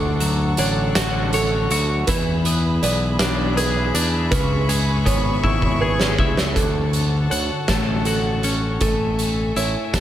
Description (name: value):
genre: post-rock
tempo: 53 BPM (dotted quarters)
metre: 6/8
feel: straight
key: D lydian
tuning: A4 = 440 Hz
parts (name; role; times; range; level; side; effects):
- clear studio string section; sustained chords; 0.0-10.0 s; G#4 to C#6; -29 LUFS; left 1 dB; none
- felt-muted upright piano; arpeggios; 0.0-10.0 s; A4 to D5; -27 LUFS; right 5 dB; tape echo
- twelve-string electric guitar; arpeggios; 0.0-10.0 s; C#3 to C#5; -23 LUFS; left 2 dB; tape echo
- growling fingered electric bass; bass; 0.0-10.0 s; G#1 to E2; -23 LUFS; equal; overdrive
- oversized low-tuned drum kit; drums; 0.2-10.0 s; hi-hat, kick drum, snare drum; -23 LUFS; equal; none
room: light reverb, small room reverb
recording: none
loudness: -17 LUFS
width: side -11 dB against mid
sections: 0.0-6.6 A section; 6.6-10.0 B section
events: drum fill 5.4-6.6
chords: 0.0 Dmaj7; 2.1 E7; 4.3 C#m7; 6.6 Dmaj7; 8.8 Amaj7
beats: 0.95 | 2.07 3.20 | 4.32 5.44 | 6.57 7.69 | 8.81 9.94